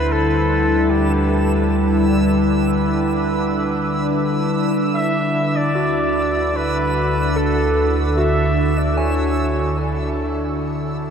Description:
ambient; 74 BPM; 4/4; straight; D major; A4 = 440 Hz
warm flugelhorn; melody; 0.0-10.6 s; G4 to E5; -23 LUFS; equal; shimmer reverb, diffuse ambient delay
evolving wavetable pad; sustained chords; 0.0-11.1 s; D3 to B4; -18 LUFS; equal; chorus, built-in reverb, shimmer reverb
soft synth bell; arpeggios; 0.0-11.1 s; F#4 to G#5; -27 LUFS; right 2 dB; chorus, shimmer reverb, diffuse ambient delay
deep rumbling drone; bass; 0.0-11.1 s; D2; -23 LUFS; equal; built-in reverb
backwards swelling texture; texture; 0.0-11.1 s; E6; -32 LUFS; right 3 dB; built-in reverb, wide subtle chorus, shimmer reverb
wet huge ambient reverb, RT60 8.4 s; dreamy mix soaked in reverb; -16 LUFS; side -7 dB against mid
0.0-11.1 A section
fade-in on synth bell 0.0-11.1; fade-in on synth texture 0.0-11.1; filter sweep on ambient pad 0.0-11.1; fade-out 9.2-11.1
0.0 Cmaj7/D (rootless); 4.9 D
0.09 0.89 | 1.70 2.50 3.31 4.12 | 4.94 5.75 6.56 7.37 | 8.18 8.98 9.79 10.58

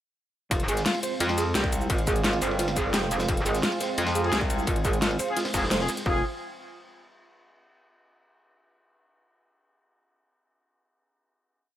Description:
dark technical drum and bass; 173 BPM; 4/4; straight; F minor; A4 = 440 Hz
dark analog pad; sustained chords; 0.7-6.2 s; Ab3 to F4; -33 LUFS; right 3 dB; chorus, sidechain pumping
mellow electric guitar; arpeggios; 0.5-6.2 s; F4 to C5; -31 LUFS; right 2 dB; sidechain pumping, tape echo
metallic wobble bass; bass; 0.5-6.2 s; F1 to F2; -27 LUFS; equal; chorus, tube saturation
crunchy breakbeat drum kit; drums; 0.5-6.1 s; hi-hat, ride cymbal, snare drum; -37 LUFS; equal; high-pass filter on cymbals, high-pass filter on hats, high-pass filter on snare, high-pass filter on room
dubstep drum kit; drums; 0.5-6.0 s; hi-hat, shaker, snare drum; -29 LUFS; left 1 dB
electronic kick drum; drums; 0.5-6.1 s; -29 LUFS; equal
warm brass ensemble; stabs; 4.2-6.2 s; C4 to Ab4; -32 LUFS; left 2 dB; tape echo
light reverb, small room ambience; -23 LUFS; side -12 dB against mid
0.5-6.1 drop; 6.1-7.4 final chord
drop 0.5-6.1
0.5 Fm; 6.1 F5
| 0.51 0.86 1.20 1.55 | 1.90 2.25 2.59 2.94 | 3.29 3.63 3.98 4.33 | 4.67 5.02 5.37 5.71 | 6.06

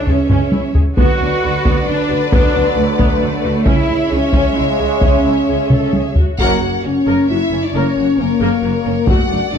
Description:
cinematic, epic orchestral film score; 134 BPM; 3/4; straight; A4 = 441 Hz
rich chamber violin section; melody; 0.0-9.6 s; C#5 to E5; -28 LUFS; left 4 dB
rich studio violin section; second line; 0.0-9.6 s; A#4 to F#5; -22 LUFS; left 6 dB
bright trombone section; sustained chords; 0.0-6.1 s; C#3 to G#3; -23 LUFS; right 4 dB
mellow French horn section; sustained chords; 0.0-9.6 s; A#3 to E5; -20 LUFS; left 5 dB
rich symphonic cello section; bass; 0.0-9.6 s; F#2 to F#4; -20 LUFS; right 3 dB
rich symphonic viola section; accompaniment; 0.1-9.6 s; A3 to A#4; -24 LUFS; right 1 dB
rich symphonic double bass section; bass; 0.1-9.6 s; F#1 to D2; -21 LUFS; right 4 dB
solo taiko drums; drums; 0.1-9.5 s; -15 LUFS; equal
moderate recital hall reverb, RT60 1.4 s; dark, warm production; -12 LUFS; side -7 dB against mid
0.0-6.4 A section; 6.4-9.6 B section
drum fill 0.3-1.0, 5.7-6.4; band accent 6.4-6.8
0.0 C#m; 1.0 Bm/D; 3.7 C#m; 6.4 F#; 9.1 D/F#
0.08 0.53 | 0.98 1.43 1.88 | 2.33 2.77 3.21 | 3.66 4.10 4.55 | 5.01 5.47 5.93 | 6.39 6.84 7.29 | 7.73 8.18 8.63 | 9.07 9.52

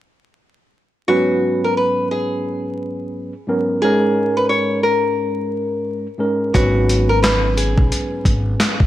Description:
hip hop, boom-bap hip-hop; 88 BPM; 4/4; swing 62% on 16ths; G# minor; A4 = 441 Hz
nylon-string guitar; melody; 1.1-8.9 s; F#4 to C#5; -20 LUFS; left 1 dB; high-pass filter, low-pass filter, slapback echo
tine electric piano; accompaniment; 1.1-8.8 s; G#2 to B4; -20 LUFS; right 1 dB; medium stereo tremolo, high-pass filter, low-pass filter
upright bass; bass; 6.5-8.5 s; G#1 to B1; -19 LUFS; equal
boom bap sampler-style drum kit; drums; 6.5-8.9 s; handclaps, hi-hat, kick drum, snare drum; -17 LUFS; equal
light reverb; vinyl crackle; -16 LUFS; side -14 dB against mid
1.1-8.9 A section
1.1 G#m11; 3.8 G#sus24; 6.5 G#m11
| 1.09 1.77 2.46 3.14 | 3.82 4.50 5.18 5.86 | 6.55 7.23 7.91 8.59

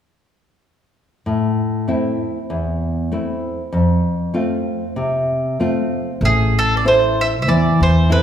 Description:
italian folk, Italian serenade; 97 BPM; 4/4; swing 55% on 8ths; A harmonic minor; A4 = 440 Hz
nylon-string guitar; accompaniment; 1.3-8.2 s; E2 to C5; -17 LUFS; equal
upright bass; bass; 6.2-8.2 s; A1 to E2; -17 LUFS; equal
bowl-back mandolin; melody; 6.3-8.2 s; G#4 to E5; -18 LUFS; right 1 dB
wet recital hall reverb, RT60 1.6 s; heard from further back in the room; -16 LUFS; side -9 dB against mid
1.3-6.2 A section; 6.2-8.2 B section
1.3 Am; 3.7 F; 6.2 Am
| 1.26 1.88 2.50 3.11 | 3.73 4.34 4.96 5.58 | 6.21 6.84 7.46 8.09

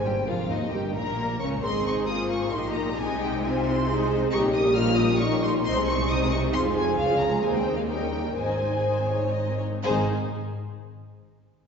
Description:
quick classical-period movement for symphony orchestra; 120-137 BPM; 3/4; rubato; Ab major; A4 = 440 Hz
rich chamber violin section; melody; 0.0-10.1 s; Eb5 to F6; -31 LUFS; left 2 dB
warm studio viola section; accompaniment; 0.0-10.1 s; Eb3 to F4; -32 LUFS; equal
dark French horn section; sustained chords; 0.0-10.0 s; C4 to C5; -27 LUFS; equal
rich symphonic cello section; bass; 0.0-10.1 s; Db2 to Db3; -31 LUFS; equal
warm chamber double bass section; bass; 0.0-10.1 s; F1 to Eb2; -31 LUFS; right 1 dB
rich chamber violin section; second line; 0.1-10.1 s; Eb4 to F5; -33 LUFS; left 3 dB
wet concert hall reverb, RT60 2.0 s; recorded in a church or concert hall, nothing above 7.6 kHz; -22 LUFS; side -6 dB against mid
0.0-9.8 A section; 9.8-11.3 B section
0.3 Eb7; 1.6 Ab; 3.0 Ab/C; 4.3 Eb7/Bb; 5.7 Ab/C; 6.5 Fm; 7.0 Db; 7.4 Ab/Eb; 7.9 Eb7; 8.4 Ab
| 0.28 0.73 1.19 | 1.64 2.08 2.53 | 2.98 3.43 3.88 | 4.32 4.76 5.21 | 5.66 6.10 6.54 | 6.98 7.43 7.88 | 8.36 8.86 9.35 | 9.85

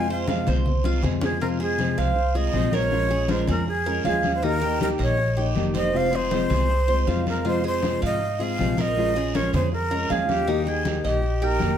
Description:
latin, Cuban son and guajira; 159 BPM; 4/4; straight; F minor; A4 = 437 Hz
breathy jazz flute; melody; 0.0-11.8 s; G4 to Ab5; -26 LUFS; right 1 dB; plate reverb
nylon-string guitar; accompaniment; 0.0-11.8 s; C3 to G4; -26 LUFS; left 3 dB
Cuban tres; arpeggios; 0.0-11.8 s; Eb4 to G5; -29 LUFS; right 4 dB
upright bass; bass; 0.0-11.8 s; F1 to Ab2; -26 LUFS; equal
congas; percussion; 0.1-11.8 s; -30 LUFS; left 1 dB
guiro; percussion; 0.3-11.8 s; -39 LUFS; right 6 dB
wet studio reverb, RT60 0.7 s; heard from further back in the room; -20 LUFS; side -9 dB against mid
0.0-1.4 A section; 1.4-11.8 B section
flute solo 0.0-1.4; drum fill 0.8-1.4
0.0 Fm; 2.9 Bbm7; 4.4 Eb; 5.9 Fm; 9.0 Bbm7; 10.5 Eb
0.28 0.66 1.03 | 1.41 1.79 2.16 2.54 | 2.92 3.29 3.67 4.05 | 4.43 4.80 5.18 5.56 | 5.94 6.31 6.69 7.07 | 7.45 7.83 8.20 8.58 | 8.96 9.34 9.72 10.10 | 10.47 10.85 11.23 11.61

